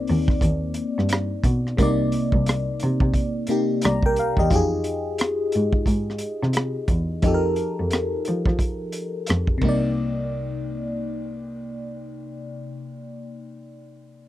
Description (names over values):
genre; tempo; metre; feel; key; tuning
R&B, neo-soul; 88 BPM; 4/4; swing 59% on 16ths; C minor; A4 = 440 Hz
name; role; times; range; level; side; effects
FM electric piano; accompaniment; 0.0-14.3 s; C3 to Bb5; -25 LUFS; left 1 dB; chorus, phaser
dark cello; bass; 0.0-13.4 s; C2 to F3; -25 LUFS; equal; none
crunchy breakbeat drum kit; drums; 0.1-9.8 s; hi-hat, kick drum, ride cymbal, rim click; -23 LUFS; equal; none
room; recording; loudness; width
little or no reverb; dry, close 1970s-style studio recording; -20 LUFS; side -14 dB against mid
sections
0.0-10.0 A section; 10.0-12.7 B section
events
none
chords
0.0 Cm9; 4.5 Fm9; 9.6 Cm9